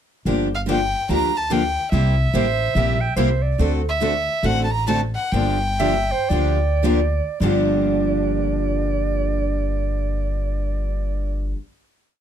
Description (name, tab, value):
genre	acoustic string swing (jazz manouche)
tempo	100-144 BPM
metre	4/4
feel	swing 63% on 8ths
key	G dorian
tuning	A4 = 440 Hz
part	picked steel-string acoustic guitar	accompaniment	0.3-11.6 s	G2 to A4	-25 LUFS	left 5 dB	none
part	picked steel-string acoustic guitar	accompaniment	0.3-11.6 s	G2 to A4	-26 LUFS	right 6 dB	none
part	upright bass	bass	0.3-11.5 s	G1 to D2	-22 LUFS	equal	none
part	warm violin	melody	0.6-6.8 s	E5 to Bb5	-24 LUFS	equal	none
part	breathy clarinet	second line	2.3-11.5 s	C5 to G5	-26 LUFS	right 8 dB	none
room	light reverb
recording	close, detailed microphones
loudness	-18 LUFS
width	side -9 dB against mid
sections	0.3-7.4 A section; 7.4-12.2 final chord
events	slowing down 3.6-7.4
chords	0.3 Gm7; 1.9 C7; 3.6 D7; 5.3 Gm7